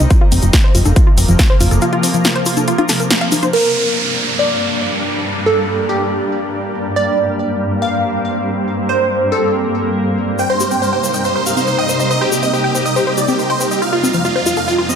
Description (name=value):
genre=uplifting trance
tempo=140 BPM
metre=4/4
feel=straight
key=G minor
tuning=A4 = 440 Hz
part: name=shimmering ambient pad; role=sustained chords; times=0.0-15.0 s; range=F2 to Eb4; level=-19 LUFS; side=equal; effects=chorus, built-in reverb, sidechain pumping
part: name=wide unison pluck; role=arpeggios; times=0.0-3.5, 10.4-14.9 s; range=F3 to G5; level=-20 LUFS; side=left 2 dB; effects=sidechain pumping, dub echo
part: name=solid FM bass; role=bass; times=0.0-1.8 s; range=F1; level=-14 LUFS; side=equal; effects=sidechain pumping
part: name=big-room dance drum kit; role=drums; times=0.0-3.6 s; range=congas, crash cymbal, hi-hat, snare drum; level=-18 LUFS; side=left 1 dB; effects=none
part: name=electronic kick drum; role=drums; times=0.1-1.5 s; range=none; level=-12 LUFS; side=equal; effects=none
part: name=tube shaker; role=percussion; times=0.1-3.5, 10.4-15.0 s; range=none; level=-25 LUFS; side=left 4 dB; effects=none
part: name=glassy wavetable pluck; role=second line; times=3.5-10.3 s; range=G4 to F5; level=-18 LUFS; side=right 1 dB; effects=chorus, digital delay
part: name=downlifter and riser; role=sound effects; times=3.5-7.0, 14.6-15.0 s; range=none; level=-21 LUFS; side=right 3 dB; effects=none
part: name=big supersaw lead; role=melody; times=10.4-15.0 s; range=F4 to G5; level=-16 LUFS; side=right 1 dB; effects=phaser, sidechain pumping, dub echo
room=light reverb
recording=none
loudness=-13 LUFS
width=side -7 dB against mid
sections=0.0-3.5 A section; 3.5-15.0 B section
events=break 1.8-3.5; band accent 3.1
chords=0.1 Fsus4; 3.5 Gm; 10.4 Cm7; 13.8 Fsus4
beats=| 0.10 0.53 0.96 1.39 | 1.82 2.25 2.68 3.10 | 3.53 3.96 4.39 4.82 | 5.25 5.68 6.11 6.53 | 6.96 7.39 7.82 8.25 | 8.68 9.11 9.53 9.96 | 10.39 10.82 11.25 11.68 | 12.11 12.53 12.96 13.39 | 13.82 14.25 14.68